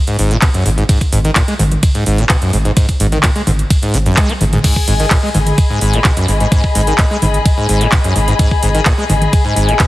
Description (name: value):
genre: acid house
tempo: 128 BPM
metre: 4/4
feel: straight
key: G# minor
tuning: A4 = 440 Hz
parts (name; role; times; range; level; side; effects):
- acid bass, saw; riff; 0.1-9.9 s; F#2 to B3; -17 LUFS; equal; lush chorus, cassette tape, sidechain pumping, tape echo
- booming analog drum machine; drums; 0.1-9.9 s; crash cymbal, handclaps, hi-hat, ride cymbal, toms; -18 LUFS; equal; none
- saturated sub bass; bass; 0.2-9.7 s; G#1; -16 LUFS; equal; sidechain pumping
- electronic kick drum; drums; 0.4-9.9 s; none; -13 LUFS; equal; none
- dark studio string section; texture; 4.6-9.9 s; G#4 to B5; -18 LUFS; left 4 dB; sidechain pumping
room: light reverb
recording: heavily compressed radio sound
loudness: -11 LUFS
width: side -16 dB against mid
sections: 0.0-4.6 A section; 4.6-9.9 A section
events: drop 0.0-4.6, 4.6-9.9; drum fill 4.3-4.6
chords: 0.0 N.C.; 4.6 G#m